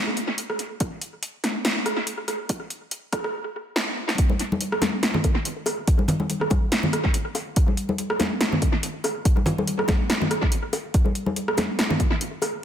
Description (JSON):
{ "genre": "dubstep", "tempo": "142 BPM", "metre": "4/4", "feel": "swing 55% on 16ths, half-time", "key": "none", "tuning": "none", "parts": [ { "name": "deep house drum kit", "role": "drums", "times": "0.1-12.5 s", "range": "hi-hat, rim click, snare drum", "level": "-25 LUFS", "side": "right 1 dB", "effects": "overdrive, tape echo" }, { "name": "electronic kick drum", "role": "drums", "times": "0.8-12.1 s", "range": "none", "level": "-22 LUFS", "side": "equal", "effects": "overdrive" }, { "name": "congas and bongos", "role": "percussion", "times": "4.3-12.5 s", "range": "none", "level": "-26 LUFS", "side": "left 1 dB", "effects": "tape echo" } ], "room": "moderate echo chamber reverb, RT60 1.5 s", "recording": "echo-heavy mix, high-pass filter", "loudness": "-22 LUFS", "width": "side -9 dB against mid", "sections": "0.0-4.2 A section; 4.2-12.6 B section", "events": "build-up 0.0-4.2; drum fill 3.8-4.2; drop 4.2-12.6", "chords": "none" }